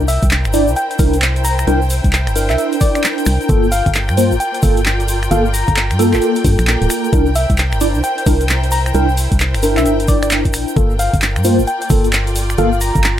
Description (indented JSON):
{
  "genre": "UK garage, two-step garage",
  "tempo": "132 BPM",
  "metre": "4/4",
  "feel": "swing 63% on 16ths",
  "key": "G dorian",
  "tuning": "A4 = 439 Hz",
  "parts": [
    { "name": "warm analog pad", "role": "sustained chords", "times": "0.0-13.2 s", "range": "G5", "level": "-28 LUFS", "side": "right 2 dB", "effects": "chorus, sidechain pumping" },
    { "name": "organ-like FM bass", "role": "bass", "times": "0.0-13.2 s", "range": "D1 to G2", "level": "-16 LUFS", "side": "equal", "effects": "none" },
    { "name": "egg shaker", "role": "percussion", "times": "0.0-13.2 s", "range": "none", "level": "-29 LUFS", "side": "left 1 dB", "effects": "none" },
    { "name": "clear studio string section", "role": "texture", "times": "0.0-13.2 s", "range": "E4 to G5", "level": "-26 LUFS", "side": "left 2 dB", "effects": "sidechain pumping" },
    { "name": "soft struck synth lead", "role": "melody", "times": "0.1-13.2 s", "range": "D5 to Bb5", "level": "-22 LUFS", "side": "left 1 dB", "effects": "chorus, digital delay" },
    { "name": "punchy analog drum machine", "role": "drums", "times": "0.1-13.2 s", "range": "finger snaps, handclaps, hi-hat", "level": "-21 LUFS", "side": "equal", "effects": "overdrive" },
    { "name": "electronic kick drum", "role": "drums", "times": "0.2-13.0 s", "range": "none", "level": "-16 LUFS", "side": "equal", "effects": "overdrive" },
    { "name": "mellow tine electric piano", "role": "stabs", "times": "0.5-12.7 s", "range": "Bb3 to D5", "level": "-18 LUFS", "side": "equal", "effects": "phaser, digital delay" }
  ],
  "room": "light reverb",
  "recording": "none",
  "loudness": "-12 LUFS",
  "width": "side -11 dB against mid",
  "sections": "0.0-13.2 A section",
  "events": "none",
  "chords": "0.0 C7; 3.5 Gm7; 7.1 C7; 10.8 Gm7"
}